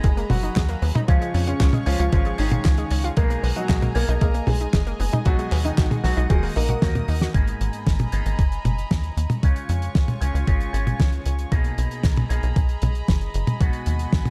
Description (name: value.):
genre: italo disco.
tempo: 115 BPM.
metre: 4/4.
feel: straight.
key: G# dorian.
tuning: A4 = 440 Hz.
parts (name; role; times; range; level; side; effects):
clear grand piano; melody; 0.0-7.2 s; C#3 to A#4; -31 LUFS; equal; tape echo.
warm studio string section; sustained chords; 0.0-14.3 s; E#4 to D#6; -37 LUFS; equal; none.
analog pluck; arpeggios; 0.0-7.3 s; E#3 to F#4; -35 LUFS; equal; chorus, tape echo.
electric guitar with an envelope filter; stabs; 0.0-14.3 s; G#2 to A#4; -35 LUFS; equal; none.
tight sequencer bass; bass; 0.0-14.2 s; D#1 to E#2; -26 LUFS; equal; none.
damped 70s drum kit; drums; 0.0-14.3 s; handclaps, hi-hat, snare drum, toms; -27 LUFS; equal; none.
electronic kick drum; drums; 0.0-14.2 s; none; -23 LUFS; equal; overdrive.
room: small room ambience.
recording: dark, warm production.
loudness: -22 LUFS.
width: mono.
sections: 0.0-7.3 A section; 7.3-14.3 B section.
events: drum fill 6.8-7.3.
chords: 0.0 G#madd9; 1.1 C#; 3.2 G#madd9/B; 5.3 B6; 6.3 D#m; 7.3 G#madd9; 9.4 C#; 11.5 G#madd9/B; 13.6 B6.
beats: 0.04 0.56 | 1.08 1.60 2.13 2.65 | 3.17 3.69 4.21 4.74 | 5.26 5.78 6.30 6.82 | 7.34 7.87 8.39 8.91 | 9.43 9.95 10.47 11.00 | 11.52 12.04 12.56 13.08 | 13.61 14.13.